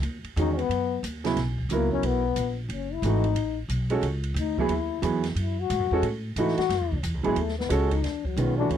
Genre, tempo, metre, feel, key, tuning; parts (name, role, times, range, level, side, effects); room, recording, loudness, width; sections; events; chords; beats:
modal jazz; 180 BPM; 4/4; swing 63% on 8ths; A4 = 439 Hz
upright bass; bass; 0.0-8.8 s; F#1 to A2; -28 LUFS; equal
open jazz drum kit; drums; 0.0-8.8 s; hi-hat, kick drum, ride cymbal, snare drum; -37 LUFS; right 1 dB
breathy trombone; second line; 0.4-8.8 s; F#3 to F#4; -28 LUFS; left 12 dB
warm baby grand piano; accompaniment; 0.4-8.8 s; C#3 to A#4; -27 LUFS; right 5 dB
little or no reverb; dry, close 1970s-style studio recording; -24 LUFS; side -9 dB against mid
0.0-8.0 A section
trombone solo 0.0-8.8
0.0 G#m9 (rootless); 2.7 F#m9; 8.0 E7sus2
| 0.03 0.37 0.70 1.03 | 1.37 1.70 2.03 2.37 | 2.70 3.04 3.37 3.70 | 4.04 4.37 4.70 5.04 | 5.37 5.70 6.04 6.37 | 6.70 7.04 7.37 7.71 | 8.04 8.37 8.71